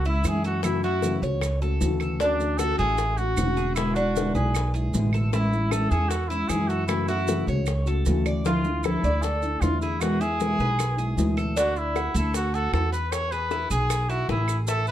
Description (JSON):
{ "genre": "latin, Cuban son and guajira", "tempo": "154 BPM", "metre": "4/4", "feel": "straight", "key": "unclear", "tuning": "A4 = 439 Hz", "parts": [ { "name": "warm trumpet", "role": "melody", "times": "0.0-14.9 s", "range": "D4 to C#5", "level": "-28 LUFS", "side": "equal", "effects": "none" }, { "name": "Cuban tres", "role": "arpeggios", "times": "0.0-14.9 s", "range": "A3 to D5", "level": "-32 LUFS", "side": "right 2 dB", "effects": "none" }, { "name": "upright bass", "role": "bass", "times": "0.0-14.9 s", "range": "E1 to F#2", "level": "-26 LUFS", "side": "right 1 dB", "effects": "none" }, { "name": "maracas", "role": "percussion", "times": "0.0-14.9 s", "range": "none", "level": "-38 LUFS", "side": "right 6 dB", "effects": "none" }, { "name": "nylon-string guitar", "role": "accompaniment", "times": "0.1-11.6 s", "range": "B2 to F#4", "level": "-28 LUFS", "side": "left 2 dB", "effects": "none" }, { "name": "bongos", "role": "percussion", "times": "0.2-14.9 s", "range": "none", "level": "-34 LUFS", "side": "left 6 dB", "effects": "none" }, { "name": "claves", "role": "percussion", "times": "0.3-14.7 s", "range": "none", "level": "-38 LUFS", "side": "right 7 dB", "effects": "none" } ], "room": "light reverb", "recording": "close, detailed microphones", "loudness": "-22 LUFS", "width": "side -11 dB against mid", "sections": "0.0-11.6 A section; 11.6-14.9 B section", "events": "none", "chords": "0.0 Amaj7; 0.6 F#m7; 2.2 Dmaj7; 3.8 E7; 5.3 Amaj7; 6.9 F#m7; 8.5 Dmadd9; 10.0 E; 11.6 D; 13.1 E" }